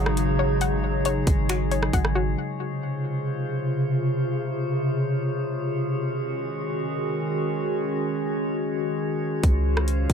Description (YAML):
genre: hip hop, atmospheric cloud-rap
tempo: free time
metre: none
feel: none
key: Db major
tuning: A4 = 439 Hz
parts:
  - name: warbly tape-like pad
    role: sustained chords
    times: 0.0-10.1 s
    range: C3 to C5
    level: -25 LUFS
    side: equal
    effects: chorus, built-in reverb, sidechain pumping, low-pass filter
  - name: hollow square pluck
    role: arpeggios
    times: 0.0-2.4 s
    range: Gb4 to Gb5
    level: -30 LUFS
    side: left 6 dB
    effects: chorus, ping-pong delay
  - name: long sustained 808-style bass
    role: bass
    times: 0.0-2.4, 9.4-10.1 s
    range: Ab1 to Db2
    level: -25 LUFS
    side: equal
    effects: none
  - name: drifting glass-harmonics texture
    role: texture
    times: 0.0-10.1 s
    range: Ab3 to F5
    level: -34 LUFS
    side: left 1 dB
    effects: chorus, built-in reverb
  - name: trap drum kit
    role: drums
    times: 0.1-2.1, 9.4-10.1 s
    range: finger snaps, hi-hat, kick drum, rim click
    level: -23 LUFS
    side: equal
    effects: none
room: light reverb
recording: none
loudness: -23 LUFS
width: side -7 dB against mid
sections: 0.0-2.4 A section; 2.4-9.4 B section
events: filter sweep on ambient pad 2.4-9.4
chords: 0.0 Ab7sus4; 2.4 Dbmaj7; 5.9 Ab7sus4; 9.4 Dbmaj7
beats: free time